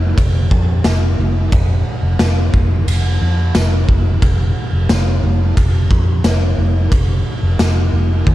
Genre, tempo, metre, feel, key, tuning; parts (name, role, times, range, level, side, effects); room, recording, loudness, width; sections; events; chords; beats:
dream pop; 89 BPM; 4/4; straight; A4 = 439 Hz
vintage muted fingered electric bass; bass; 0.0-8.3 s; F1 to F2; -15 LUFS; equal
raw garage drum kit; drums; 0.2-8.3 s; kick drum, ride cymbal, snare drum, tambourine, toms; -16 LUFS; equal
little or no reverb; dark, warm production; -12 LUFS; side -15 dB against mid
0.0-8.3 A section
0.17 0.85 | 1.52 2.20 2.87 3.55 | 4.22 4.89 5.57 6.24 | 6.92 7.59 8.27